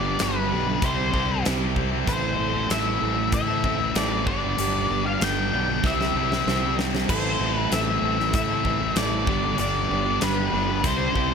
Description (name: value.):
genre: classic rock.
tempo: 96 BPM.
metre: 4/4.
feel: straight.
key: unclear.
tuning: A4 = 435 Hz.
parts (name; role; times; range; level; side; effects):
octave-fuzz lead guitar; melody; 0.0-11.3 s; B4 to G5; -26 LUFS; left 3 dB; distortion, slapback echo.
crunchy overdriven guitar; riff; 0.0-11.3 s; G2 to C4; -31 LUFS; equal; none.
overdriven electric guitar; riff; 0.0-11.3 s; G2 to A4; -30 LUFS; right 14 dB; none.
tight distorted guitar; riff; 0.0-11.3 s; G2 to E4; -30 LUFS; left 14 dB; distortion.
fuzz fingered electric bass; bass; 0.0-11.3 s; G1 to A2; -29 LUFS; equal; overdrive.
huge arena drum kit; drums; 0.2-11.3 s; crash cymbal, hi-hat, kick drum, snare drum; -28 LUFS; equal; none.
room: light reverb, small room ambience.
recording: none.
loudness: -21 LUFS.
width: side -6 dB against mid.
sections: 0.0-11.3 A section.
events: drum fill 5.8-7.1.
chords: 0.0 G; 0.8 C; 2.1 Am; 4.3 G; 5.8 C; 7.1 Am; 9.3 G.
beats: 0.20 0.82 1.45 | 2.08 2.70 3.33 3.96 | 4.58 5.21 5.84 6.47 | 7.09 7.72 8.35 8.97 | 9.60 10.22 10.85.